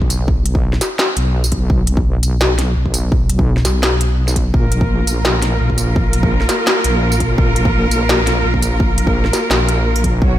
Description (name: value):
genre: half-time drum and bass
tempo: 169 BPM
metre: 4/4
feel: half-time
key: unclear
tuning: A4 = 440 Hz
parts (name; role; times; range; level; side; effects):
- deep soft wobble bass; bass; 0.0-10.4 s; Bb1 to Cb2; -16 LUFS; equal; chorus
- electronic kick drum; drums; 0.0-10.3 s; none; -17 LUFS; equal; distortion, studio reverb
- industrial drum kit; drums; 0.1-10.1 s; hi-hat, snare drum, tambourine; -19 LUFS; left 1 dB; studio reverb
- rich symphonic cello section; sustained chords; 4.5-10.4 s; Bb3 to Db5; -19 LUFS; equal; sidechain pumping
room: light reverb, digital ambience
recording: none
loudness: -13 LUFS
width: side -13 dB against mid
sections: 0.0-10.4 A section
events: none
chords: 0.0 N.C.; 4.5 Bb5